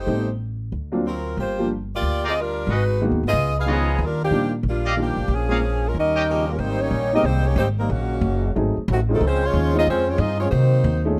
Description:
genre	jazz, big band swing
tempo	184 BPM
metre	4/4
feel	swing 64% on 8ths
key	Eb major, Ab major from 6.6 s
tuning	A4 = 440 Hz
part	clear saxophone section	melody	0.0-11.1 s	Eb3 to F5	-26 LUFS	equal	none
part	upright bass	bass	0.0-11.2 s	Gb1 to C3	-25 LUFS	equal	none
part	warm upright piano	accompaniment	0.1-11.2 s	Eb3 to Ab4	-27 LUFS	equal	none
part	brilliant trumpet section	stabs	2.2-6.2 s	F4 to G5	-28 LUFS	equal	none
part	warm trombone section	second line	6.0-11.1 s	Bb2 to Eb4	-29 LUFS	equal	none
room	little or no reverb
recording	faint mains hum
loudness	-22 LUFS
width	mono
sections	0.0-6.6 A section; 6.6-11.2 B section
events	none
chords	0.1 Am7b5; 0.7 D7alt; 1.4 Gm7; 2.7 Abm7; 3.3 Db9; 4.0 Ebmaj9; 5.3 Bbm7; 6.0 Eb9; 6.6 Abmaj9; 7.9 Ebm7; 8.6 Ab7b9; 9.2 Dbmaj7; 10.5 Cm7b5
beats	| 0.07 0.40 0.73 1.05 | 1.38 1.71 2.03 2.36 | 2.69 3.01 3.34 3.67 | 3.99 4.32 4.65 4.97 | 5.30 5.63 5.95 6.28 | 6.61 6.93 7.26 7.58 | 7.91 8.24 8.56 8.89 | 9.21 9.54 9.87 10.19 | 10.52 10.84

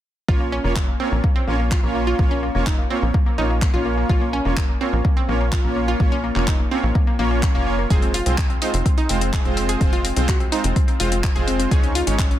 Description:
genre	progressive house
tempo	126 BPM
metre	4/4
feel	straight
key	Bb minor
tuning	A4 = 444 Hz
part	analog pluck	arpeggios	0.3-12.4 s	Bb3 to Ab4	-25 LUFS	left 1 dB	chorus, sidechain pumping, dub echo
part	soft supersaw	stabs	0.3-12.1 s	Ab3 to Db5	-24 LUFS	right 2 dB	sidechain pumping, dub echo
part	tight sequencer bass	bass	0.3-12.4 s	F1 to Db2	-24 LUFS	equal	sidechain pumping
part	electronic kick drum	drums	0.3-12.3 s	none	-19 LUFS	equal	overdrive
part	deep house drum kit	drums	0.8-12.4 s	handclaps, hi-hat	-29 LUFS	left 1 dB	overdrive, soft clipping on snare, sidechain pumping on hats
room	light reverb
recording	dense, heavily limited modern master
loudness	-17 LUFS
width	side -12 dB against mid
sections	0.3-12.4 A section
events	none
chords	0.3 Bbm; 7.9 Fm; 11.7 Dbsus2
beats	| 0.28 0.76 1.24 1.71 | 2.19 2.67 3.14 3.62 | 4.09 4.57 5.05 5.52 | 6.00 6.48 6.95 7.43 | 7.90 8.38 8.86 9.33 | 9.81 10.29 10.76 11.24 | 11.71 12.19

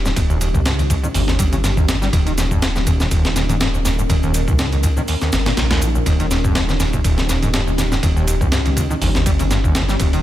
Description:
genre	breakbeat, breaks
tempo	122 BPM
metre	4/4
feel	swing 55% on 16ths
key	unclear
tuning	A4 = 435 Hz
part	deep dark ambient pad	sustained chords	0.0-10.2 s	Db4 to Bb4	-26 LUFS	left 1 dB	chorus, built-in reverb, sidechain pumping
part	screaming distorted acid line	riff	0.0-10.2 s	Eb1 to G3	-22 LUFS	equal	distortion, lush chorus, cassette tape
part	detuned saw bass	bass	0.0-10.2 s	Eb1 to Db2	-20 LUFS	equal	tube saturation
part	breakbeat sampler-style drum kit	drums	0.1-10.2 s	hi-hat, kick drum, ride cymbal, snare drum	-19 LUFS	equal	small room ambience
part	shaker	drums	0.1-10.2 s	none	-32 LUFS	equal	overdrive, small room ambience
part	congas	percussion	0.2-10.1 s	none	-29 LUFS	left 3 dB	none
room	digital ambience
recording	none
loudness	-15 LUFS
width	side -13 dB against mid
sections	0.0-10.2 A section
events	none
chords	0.0 Eb7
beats	| 0.16 0.66 1.15 1.64 | 2.13 2.62 3.12 3.61 | 4.10 4.59 5.08 5.57 | 6.07 6.56 7.05 7.54 | 8.03 8.53 9.02 9.51 | 10.00

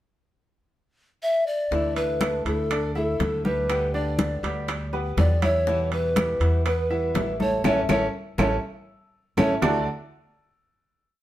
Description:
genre	latin, Cuban son and guajira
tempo	121 BPM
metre	4/4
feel	straight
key	unclear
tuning	A4 = 440 Hz
part	mellow hollow polished pan flute	melody	1.2-9.9 s	A4 to E5	-26 LUFS	equal	none
part	flamenco guitar	accompaniment	1.7-9.8 s	B2 to G4	-32 LUFS	left 4 dB	none
part	bright baby grand piano	arpeggios	1.7-9.9 s	D3 to E5	-30 LUFS	right 2 dB	none
part	upright bass	bass	1.7-9.9 s	A1 to E2	-27 LUFS	equal	none
part	bongos	percussion	1.7-9.7 s	none	-31 LUFS	left 3 dB	none
part	congas	percussion	1.7-9.7 s	none	-29 LUFS	left 2 dB	none
part	timbales	percussion	2.0-9.7 s	none	-32 LUFS	right 4 dB	none
part	claves	percussion	2.2-9.7 s	none	-36 LUFS	right 4 dB	none
room	moderate stone room reverb, RT60 0.9 s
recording	band playing live in one room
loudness	-22 LUFS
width	side -13 dB against mid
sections	0.0-1.7 pickup bar; 1.7-9.6 A section; 9.6-11.2 final chord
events	band accent 7.6-9.6; drum fill 8.9-9.6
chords	0.0 N.C.; 1.7 Dsus2; 3.7 G/D; 5.7 Em; 7.6 A; 9.6 D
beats	0.23 0.73 1.22 | 1.72 2.21 2.71 3.20 | 3.69 4.19 4.68 5.17 | 5.67 6.16 6.66 7.15 | 7.65 8.14 8.63 9.13 | 9.62

